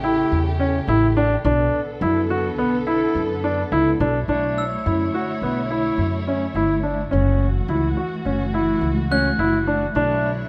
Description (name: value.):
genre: contemporary instrumental, chamber music in an uneven meter.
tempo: 106 BPM.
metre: 5/4.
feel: straight.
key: B minor.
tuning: A4 = 437 Hz.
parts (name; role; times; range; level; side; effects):
dark studio string section; sustained chords; 0.0-10.5 s; C#3 to C#5; -29 LUFS; equal; none.
warm grand piano; arpeggios; 0.0-10.3 s; B3 to F#4; -23 LUFS; equal; none.
upright bass; bass; 0.0-10.4 s; F#1 to F#2; -26 LUFS; equal; none.
glockenspiel with brass mallets; texture; 4.6-10.2 s; E6 to F#6; -32 LUFS; equal; none.
room: light reverb.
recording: none.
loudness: -21 LUFS.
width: mono.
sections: 0.0-4.3 A section; 4.3-10.5 B section.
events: none.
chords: 0.0 A7; 1.5 Bm7; 4.3 Bm11; 7.1 F#m7; 10.0 Bm11.